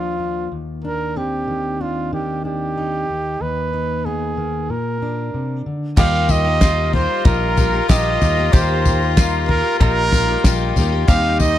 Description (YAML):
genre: indie folk with a building arrangement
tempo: 94 BPM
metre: 4/4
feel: straight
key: Eb major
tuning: A4 = 441 Hz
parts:
  - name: warm trumpet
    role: melody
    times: 0.0-11.6 s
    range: F4 to F5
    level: -22 LUFS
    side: right 3 dB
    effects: none
  - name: fingerpicked plugged-in steel-string acoustic guitar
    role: accompaniment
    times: 0.0-6.0 s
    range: Eb2 to Eb4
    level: -24 LUFS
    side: left 2 dB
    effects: none
  - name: warm cello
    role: second line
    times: 6.0-11.6 s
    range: Eb4 to F4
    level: -24 LUFS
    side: left 9 dB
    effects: none
  - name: picked twelve-string acoustic guitar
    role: accompaniment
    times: 6.0-11.6 s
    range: Eb3 to G4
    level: -27 LUFS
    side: left 5 dB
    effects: none
  - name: warm upright piano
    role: accompaniment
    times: 6.0-11.6 s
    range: Eb2 to Eb5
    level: -33 LUFS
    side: right 4 dB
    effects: none
  - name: warm chamber string section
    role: sustained chords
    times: 6.0-11.6 s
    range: G4 to C6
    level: -32 LUFS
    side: left 2 dB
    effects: none
  - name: mandolin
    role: arpeggios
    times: 6.0-11.6 s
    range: Eb4 to G4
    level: -28 LUFS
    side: right 4 dB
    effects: none
  - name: fingered electric bass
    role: bass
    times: 6.0-11.6 s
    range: Bb1 to Eb2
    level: -20 LUFS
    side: equal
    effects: none
  - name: cloth-damped thuddy drum kit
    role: drums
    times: 6.0-11.6 s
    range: crash cymbal, kick drum, snare drum, toms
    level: -15 LUFS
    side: equal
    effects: none
  - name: tambourine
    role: percussion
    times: 6.0-11.5 s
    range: none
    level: -31 LUFS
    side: left 19 dB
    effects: none
room: small room ambience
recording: dry, close 1970s-style studio recording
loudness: -16 LUFS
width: side -12 dB against mid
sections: 0.0-6.0 A section; 6.0-11.6 B section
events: none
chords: 0.0 Bb/Eb; 0.5 Cmadd9/Eb; 3.4 Abm/Eb; 4.7 Bb; 6.0 Eb